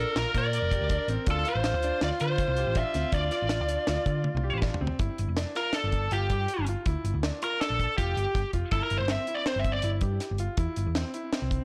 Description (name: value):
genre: progressive instrumental, band music in an uneven meter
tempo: 161 BPM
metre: 5/4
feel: straight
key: G dorian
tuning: A4 = 440 Hz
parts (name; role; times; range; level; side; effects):
- biting lead guitar; melody; 0.0-9.9 s; G4 to E5; -32 LUFS; equal; overdrive
- bright alto saxophone; second line; 0.0-4.8 s; F4 to Bb4; -36 LUFS; equal; none
- bright concert grand piano; arpeggios; 0.0-11.6 s; C4 to G4; -39 LUFS; equal; tape echo
- hollow-body short-scale picked electric bass; bass; 0.0-11.6 s; F1 to D3; -32 LUFS; equal; none
- deep reggae drum kit; drums; 0.2-11.6 s; hi-hat, kick drum, snare drum, toms; -34 LUFS; equal; none
room: light reverb, small room ambience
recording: blown-out, overdriven recording, overdrive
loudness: -28 LUFS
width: mono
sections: 0.0-5.0 A section; 5.0-11.6 B section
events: drum fill 4.3-5.0; lead electric guitar solo 5.0-11.6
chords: 0.0 Gm7/Bb; 1.3 Dm7; 5.0 G7(no3); 8.7 Am7/G (rootless)